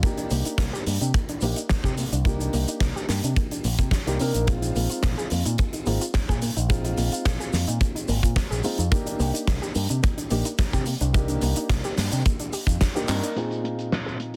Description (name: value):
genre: nu-disco, nu disco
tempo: 108 BPM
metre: 4/4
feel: straight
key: C minor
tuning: A4 = 439 Hz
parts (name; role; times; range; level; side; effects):
- dark grand piano; accompaniment; 0.0-14.4 s; Bb2 to Bb4; -34 LUFS; equal; tape echo
- soft round pluck; arpeggios; 0.0-14.3 s; Bb3 to Ab4; -35 LUFS; equal; chorus, sidechain pumping, digital delay
- gated 80s drum kit; drums; 0.0-14.4 s; handclaps, hi-hat, shaker, snare drum; -33 LUFS; equal; low-pass filter on hats, low-pass filter on snare, low-pass filter on perc, low-pass filter on room
- kick drum; drums; 0.0-12.9 s; none; -26 LUFS; equal; none
- tube shaker; percussion; 0.0-13.3 s; none; -43 LUFS; equal; none
- picked electric bass with an envelope filter; bass; 0.3-13.2 s; Ab1 to C3; -28 LUFS; equal; none
room: small room ambience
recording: dense, heavily limited modern master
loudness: -24 LUFS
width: mono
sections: 0.0-13.4 A section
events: drum fill 13.1; band accent 13.1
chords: 0.0 Cm9; 4.5 Bb9sus4; 8.9 Cm9; 13.4 Bb9sus4